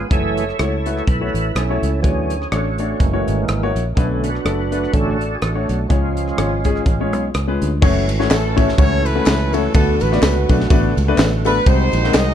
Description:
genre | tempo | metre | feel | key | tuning
uptempo gospel | 124 BPM | 4/4 | swing 56% on 8ths | F# minor | A4 = 438 Hz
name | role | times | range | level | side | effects
percussive tonewheel organ | sustained chords | 0.0-12.3 s | D3 to E5 | -24 LUFS | right 4 dB | fast rotary speaker, overdrive, chorus vibrato
fingered electric bass | bass | 0.0-12.3 s | F#1 to D2 | -20 LUFS | equal | none
warm concert grand piano | accompaniment | 0.1-12.3 s | B2 to D5 | -22 LUFS | left 4 dB | none
crisp fusion drum kit | drums | 0.1-12.3 s | crash cymbal, hi-hat, kick drum, ride cymbal, rim click, snare drum | -18 LUFS | equal | none
tambourine and handclaps | percussion | 7.8-12.3 s | none | -32 LUFS | left 2 dB | none
warm horn section | melody | 8.3-12.3 s | C#4 to D#5 | -21 LUFS | right 1 dB | none
room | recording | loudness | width
little or no reverb | dark, warm production | -15 LUFS | side -10 dB against mid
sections
0.0-7.8 A section; 7.8-12.3 B section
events
tonewheel organ solo 0.0-7.8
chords
0.1 F#m7; 2.0 Dmaj7; 3.0 F#7; 4.0 Bm7; 5.9 C#; 7.8 F#m7; 9.7 D6; 11.7 G#7

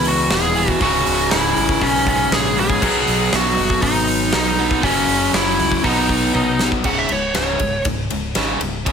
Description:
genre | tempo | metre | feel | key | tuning
hard rock | 119 BPM | 4/4 | straight | C# minor | A4 = 440 Hz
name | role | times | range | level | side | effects
biting lead guitar | melody | 0.0-7.8 s | C#4 to F#5 | -20 LUFS | equal | overdrive, slapback echo
biting overdriven guitar | riff | 0.0-6.8 s | C#2 to B3 | -25 LUFS | left 1 dB | phaser
overdriven electric guitar | riff | 0.0-8.9 s | C#2 to B3 | -24 LUFS | left 12 dB | none
overdriven semi-hollow guitar | riff | 0.0-8.9 s | C#2 to B3 | -23 LUFS | right 10 dB | none
modern bright fingered electric bass | bass | 0.0-8.9 s | C#1 to C#2 | -26 LUFS | equal | none
big rock drum kit | drums | 0.0-8.9 s | crash cymbal, hi-hat, kick drum, ride cymbal, snare drum, toms | -21 LUFS | right 1 dB | none
room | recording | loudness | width
light reverb, studio reverb | none | -15 LUFS | side -7 dB against mid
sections
0.0-6.8 A section; 6.8-8.9 B section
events
drum fill 6.3-6.8; lead electric guitar solo 6.8-8.9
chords
0.0 E; 0.8 C#m; 2.8 B; 4.8 F#5; 5.8 B; 6.8 C#5

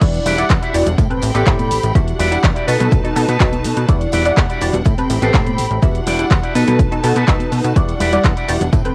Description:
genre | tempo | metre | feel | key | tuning
filtered disco house | 124 BPM | 4/4 | straight | E minor | A4 = 440 Hz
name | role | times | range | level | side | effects
funky polysynth comp | accompaniment | 0.0-8.9 s | G3 to B5 | -22 LUFS | equal | chorus, phaser, sidechain pumping, low-pass filter
bright studio string section | sustained chords | 0.0-8.9 s | G3 to B5 | -30 LUFS | equal | sidechain pumping, low-pass filter
plucky analog bass | bass | 0.0-8.9 s | E1 to B2 | -22 LUFS | equal | sidechain pumping, low-pass filter
electronic kick drum | drums | 0.0-8.8 s | none | -18 LUFS | equal | cassette tape
punchy analog drum machine | drums | 0.0-8.9 s | crash cymbal, handclaps, hi-hat, shaker | -26 LUFS | equal | sidechain pumping on hats, cassette tape, sidechain pumping on perc, sidechain pumping on cymbals
tambourine and congas | percussion | 0.0-8.9 s | none | -31 LUFS | equal | none
electric guitar with an envelope filter | riff | 0.3-8.8 s | C4 to E5 | -24 LUFS | equal | vintage 12-bit sampler grit, sidechain pumping, low-pass filter
room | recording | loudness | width
light reverb | home recording on cassette | -15 LUFS | mono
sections
0.0-8.9 A section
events
drop 0.0-8.9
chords
0.0 Em9; 1.0 Am9; 2.0 Em9; 2.7 B7; 3.9 Em9; 4.9 Am9; 5.8 Em9; 6.5 B7; 7.8 Em9

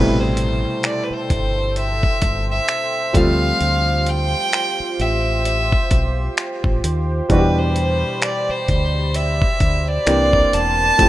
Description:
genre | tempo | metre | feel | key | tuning
contemporary R&B | 65 BPM | 4/4 | swing 58% on 16ths | A minor | A4 = 441 Hz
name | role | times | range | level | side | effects
warm violin | melody | 0.0-11.1 s | B4 to A5 | -20 LUFS | equal | none
clear concert grand piano | accompaniment | 0.0-11.1 s | B2 to G4 | -23 LUFS | equal | none
warm analog pad | sustained chords | 0.0-11.1 s | F4 to C6 | -28 LUFS | right 1 dB | chorus
deep dub fingered electric bass | bass | 0.0-11.1 s | E1 to E2 | -21 LUFS | equal | none
dusty soul sampler-style drum kit | drums | 0.4-11.1 s | finger snaps, hi-hat, kick drum | -20 LUFS | equal | none
room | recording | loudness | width
little or no reverb | rough home demo mix | -16 LUFS | side -15 dB against mid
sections
0.0-11.1 A section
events
none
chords
0.0 Am7; 3.1 Dm11; 7.3 Em7; 10.1 C9

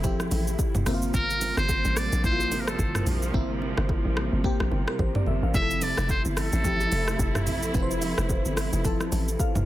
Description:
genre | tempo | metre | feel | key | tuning
amapiano | 109 BPM | 4/4 | swing 58% on 16ths | F major | A4 = 440 Hz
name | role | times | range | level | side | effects
crystalline FM electric piano | accompaniment | 0.0-9.7 s | F3 to F5 | -31 LUFS | left 2 dB | chorus
warm studio string section | sustained chords | 0.0-9.7 s | C3 to E4 | -33 LUFS | right 3 dB | sidechain pumping
hollow log drum bass | bass | 0.0-9.7 s | F1 to Bb1 | -28 LUFS | equal | none
deep house drum kit | drums | 0.0-9.7 s | hi-hat, kick drum, rim click, shaker, toms | -28 LUFS | equal | soft clipping on snare
congas and bongos | percussion | 0.0-9.7 s | none | -37 LUFS | right 2 dB | none
trumpet with metal mute | melody | 1.1-7.4 s | A4 to E5 | -29 LUFS | equal | digital delay
room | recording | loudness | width
little or no reverb | dense, heavily limited modern master | -23 LUFS | side -15 dB against mid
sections
0.0-9.7 A section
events
hi-hats muted 3.3-5.5; FM electric piano fill 9.1-9.7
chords
0.0 Fmaj7; 0.9 C7sus4/G; 5.5 Fmaj7

